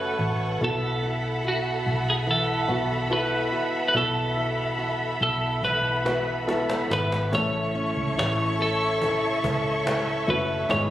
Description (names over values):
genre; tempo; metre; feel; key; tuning
pop ballad; 71 BPM; 4/4; straight; unclear; A4 = 440 Hz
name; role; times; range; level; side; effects
twelve-string electric guitar; melody; 0.0-10.9 s; F#4 to C#5; -27 LUFS; equal; none
warm upright piano; accompaniment; 0.0-10.9 s; G#2 to B4; -31 LUFS; left 2 dB; none
rich studio string section; sustained chords; 0.0-10.9 s; G#4 to C#6; -28 LUFS; equal; none
fingerpicked plugged-in steel-string acoustic guitar; arpeggios; 0.0-10.9 s; F#2 to A4; -32 LUFS; right 2 dB; none
vintage muted fingered electric bass; bass; 0.0-10.9 s; F#1 to C#2; -30 LUFS; equal; none
cajon; drums; 5.6-10.9 s; none; -33 LUFS; equal; none
room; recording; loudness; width
light reverb, studio ambience; recorded on a phone in the room, studio reverb; -22 LUFS; side -13 dB against mid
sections
0.0-7.3 A section; 7.3-10.9 B section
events
drum fill 5.6-7.3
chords
0.0 F#m; 0.6 B7sus4; 7.3 A